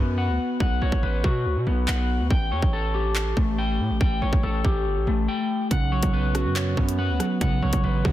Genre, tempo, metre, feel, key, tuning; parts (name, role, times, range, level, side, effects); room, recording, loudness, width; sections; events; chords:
hip hop, drill; 141 BPM; 4/4; half-time; A4 = 440 Hz
electric guitar at the edge of break-up; arpeggios; 0.0-8.1 s; A3 to G5; -26 LUFS; left 3 dB; wide subtle chorus, low-pass filter, ping-pong delay
distorted 808-style bass; bass; 0.0-8.1 s; G1 to B2; -25 LUFS; right 1 dB; distortion
drill drum kit; drums; 0.6-8.1 s; handclaps, hi-hat, kick drum, rim click; -24 LUFS; equal
mellow electric guitar; accompaniment; 5.7-8.1 s; C#3 to C#5; -26 LUFS; right 4 dB; low-pass filter
little or no reverb; dense, heavily limited modern master; -21 LUFS; side -13 dB against mid
0.0-8.1 A section
break 0.0-5.7; drums muted 5.3-5.7
0.0 Bsus2; 2.3 A7; 5.7 Bsus2